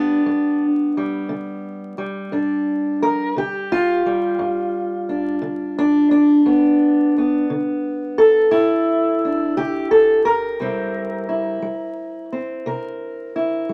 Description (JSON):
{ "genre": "acoustic country blues, solo or duo", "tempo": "58 BPM (dotted quarters)", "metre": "12/8", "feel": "straight", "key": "G mixolydian", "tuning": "A4 = 440 Hz", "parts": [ { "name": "fingerpicked steel-string acoustic guitar", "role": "solo", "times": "0.0-13.7 s", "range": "G2 to Bb4", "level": "-19 LUFS", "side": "equal", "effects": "none" } ], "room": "light reverb", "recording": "vinyl crackle", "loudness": "-19 LUFS", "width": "mono", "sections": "0.0-13.7 A section", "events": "none", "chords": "0.0 G7; 10.6 C7", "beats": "0.28 1.31 | 2.34 3.38 4.41 5.44 | 6.47 7.50 8.54 9.57 | 10.60 11.64 12.67 13.70" }